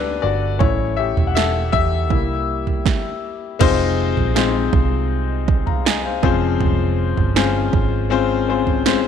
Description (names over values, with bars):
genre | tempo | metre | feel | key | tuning
pop ballad | 80 BPM | 4/4 | straight | F minor from 3.6 s | A4 = 439 Hz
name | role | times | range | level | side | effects
clear baby grand piano | accompaniment | 0.0-9.1 s | C3 to Bb5 | -20 LUFS | left 10 dB | none
vintage muted fingered electric bass | bass | 0.0-9.1 s | E1 to E2 | -22 LUFS | right 2 dB | none
deep house drum kit | drums | 0.6-9.0 s | crash cymbal, kick drum, snare drum, toms | -20 LUFS | right 5 dB | overdrive
room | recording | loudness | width
light reverb, digital ambience | 1960s-style stereo | -16 LUFS | side -8 dB against mid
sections
0.0-3.6 A section; 3.6-9.1 A section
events
grand piano solo 0.0-3.6; stop 2.9-3.6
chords
0.0 Gmaj7; 0.6 A; 2.1 C7; 3.6 Fm7; 6.2 Dbmaj7/F